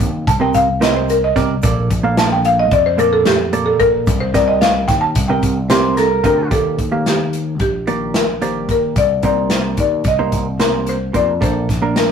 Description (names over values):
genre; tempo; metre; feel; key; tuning
progressive instrumental, band music in an uneven meter; 221 BPM (eighths); 9/8; straight; C dorian; A4 = 440 Hz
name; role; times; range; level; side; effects
hollow-body jazz guitar; accompaniment; 0.0-12.1 s; Bb2 to F5; -20 LUFS; right 3 dB; none
picked electric bass; bass; 0.0-12.1 s; Bb1 to F2; -22 LUFS; equal; none
natural country drum kit; drums; 0.0-12.1 s; hi-hat, kick drum, snare drum; -19 LUFS; equal; none
buzzing marimba with medium hard mallets; melody; 0.3-12.1 s; G4 to A5; -16 LUFS; left 1 dB; none
tube shaker; percussion; 0.5-6.4 s; none; -38 LUFS; left 4 dB; none
clean electric guitar; second line; 5.7-6.5 s; Bb4 to C5; -19 LUFS; equal; none
room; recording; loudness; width
moderate small room reverb, RT60 0.5 s; rough rehearsal-room recording, warm saturation; -13 LUFS; side -7 dB against mid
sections
0.0-6.5 A section; 6.5-12.1 B section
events
marimba solo 0.0-6.5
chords
0.0 Cm7; 1.6 Bbmaj7; 4.1 Cm7; 6.5 Ebmaj7; 9.0 Cm7; 11.4 Bbmaj7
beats
0.27 0.54 0.81 1.08 1.35 | 1.63 1.90 2.17 2.44 2.71 2.98 3.26 3.53 3.80 | 4.07 4.34 4.61 4.89 5.16 5.43 5.70 5.97 6.24 | 6.52 6.79 7.06 7.33 7.61 7.88 8.15 8.42 8.69 | 8.97 9.24 9.51 9.78 10.06 10.33 10.60 10.87 11.15 | 11.42 11.69 11.96